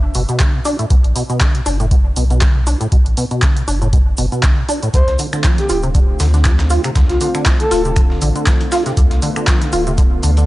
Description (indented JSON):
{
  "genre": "acid house",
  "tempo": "119 BPM",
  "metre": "4/4",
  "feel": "swing 55% on 16ths",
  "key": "unclear",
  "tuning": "A4 = 444 Hz",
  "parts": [
    { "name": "warm sub bass", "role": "bass", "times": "0.0-10.5 s", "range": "D1 to D2", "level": "-16 LUFS", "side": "equal", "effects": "sidechain pumping" },
    { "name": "liquid acid bass", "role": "riff", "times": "0.1-10.5 s", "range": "A2 to F4", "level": "-20 LUFS", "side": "equal", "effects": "analog chorus, tape echo" },
    { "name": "punchy analog drum machine", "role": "drums", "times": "0.1-10.5 s", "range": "finger snaps, handclaps, hi-hat", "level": "-23 LUFS", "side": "equal", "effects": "overdrive" },
    { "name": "tube shaker", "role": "percussion", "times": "0.1-10.5 s", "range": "none", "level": "-31 LUFS", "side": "right 3 dB", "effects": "none" },
    { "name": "electronic kick drum", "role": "drums", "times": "0.4-10.1 s", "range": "none", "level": "-14 LUFS", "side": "equal", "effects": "none" },
    { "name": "breathy flute-like synth lead", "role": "melody", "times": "4.9-8.0 s", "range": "F4 to C5", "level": "-22 LUFS", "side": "equal", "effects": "chorus, cassette tape, tape echo" },
    { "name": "lush unison pad", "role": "sustained chords", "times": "4.9-10.5 s", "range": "D3 to F4", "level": "-25 LUFS", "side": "equal", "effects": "chorus, sidechain pumping" },
    { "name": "dusty soul sampler-style drum kit", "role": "drums", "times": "4.9-10.5 s", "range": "hi-hat, shaker, snare drum", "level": "-30 LUFS", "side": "right 1 dB", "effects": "overdrive, high-pass filter on snare, high-pass filter on perc, high-pass filter on hats, high-pass filter on room" }
  ],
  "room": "little or no reverb",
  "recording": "dry, gritty hardware recording, transformer saturation, nothing above 10.6 kHz",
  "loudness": "-12 LUFS",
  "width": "side -17 dB against mid",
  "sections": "0.0-10.5 A section",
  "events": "none",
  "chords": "0.0 Bm; 4.9 Dm7"
}